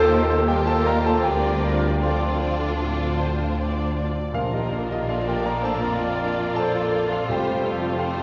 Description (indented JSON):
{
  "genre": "cinematic, emotional film score for orchestra",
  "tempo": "76-87 BPM",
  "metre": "4/4",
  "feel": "rubato",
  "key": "Bb major",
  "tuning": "A4 = 442 Hz",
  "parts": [
    { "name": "warm symphonic violin section", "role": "melody", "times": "0.0-8.2 s", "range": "F4 to G4", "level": "-35 LUFS", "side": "equal", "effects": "none" },
    { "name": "large flute ensemble", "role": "second line", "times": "0.0-8.2 s", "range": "F4 to D5", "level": "-34 LUFS", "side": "equal", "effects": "none" },
    { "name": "mellow clarinet", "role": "second line", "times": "0.0-8.2 s", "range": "D4 to Bb4", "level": "-32 LUFS", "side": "equal", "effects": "none" },
    { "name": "warm symphonic violin section", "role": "second line", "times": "0.0-8.2 s", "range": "G3 to F4", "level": "-33 LUFS", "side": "equal", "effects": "none" },
    { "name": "clear grand piano", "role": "accompaniment", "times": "0.0-8.2 s", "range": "Bb1 to Bb5", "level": "-29 LUFS", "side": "equal", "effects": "none" },
    { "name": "rich symphonic viola section", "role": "accompaniment", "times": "0.0-8.2 s", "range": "Bb3 to D5", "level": "-36 LUFS", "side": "equal", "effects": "none" },
    { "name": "dark French horn section", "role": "sustained chords", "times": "0.0-8.2 s", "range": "D3 to A4", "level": "-31 LUFS", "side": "equal", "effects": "none" },
    { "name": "clear symphonic cello section", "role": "bass", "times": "0.0-8.2 s", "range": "D2 to Bb2", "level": "-34 LUFS", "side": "equal", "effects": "none" },
    { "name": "rich symphonic double bass section", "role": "bass", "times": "0.0-8.2 s", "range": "F1 to Eb2", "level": "-29 LUFS", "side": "equal", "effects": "none" },
    { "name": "timpani", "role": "percussion", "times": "4.3-8.2 s", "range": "F2 to Bb2", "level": "-36 LUFS", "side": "equal", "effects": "none" }
  ],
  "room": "wet recital hall reverb, RT60 1.6 s",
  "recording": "recorded in a church or concert hall, vinyl crackle, nothing above 7.5 kHz",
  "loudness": "-23 LUFS",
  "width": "mono",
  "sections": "0.0-8.2 A section",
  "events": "none",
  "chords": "0.0 Ebadd9; 1.2 Dm7; 4.3 Bb; 7.3 Fadd9"
}